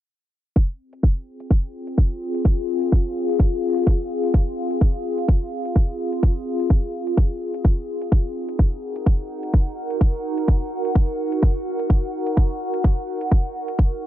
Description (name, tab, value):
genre	bass house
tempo	127 BPM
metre	4/4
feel	swing 56% on 16ths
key	F phrygian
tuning	A4 = 440 Hz
part	electronic hi-hat	drums	0.6-13.9 s	none	-54 LUFS	right 1 dB	overdrive
part	electronic kick drum	drums	0.6-13.9 s	none	-17 LUFS	equal	none
part	warbly tape-like pad	texture	1.4-14.1 s	C4 to Gb5	-25 LUFS	left 1 dB	chorus, built-in reverb, phaser, sidechain pumping
room	light reverb, digital ambience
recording	low-pass filter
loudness	-19 LUFS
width	side -13 dB against mid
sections	0.6-14.1 A section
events	filter sweep 0.6-14.1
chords	0.6 Fm; 8.1 Ebm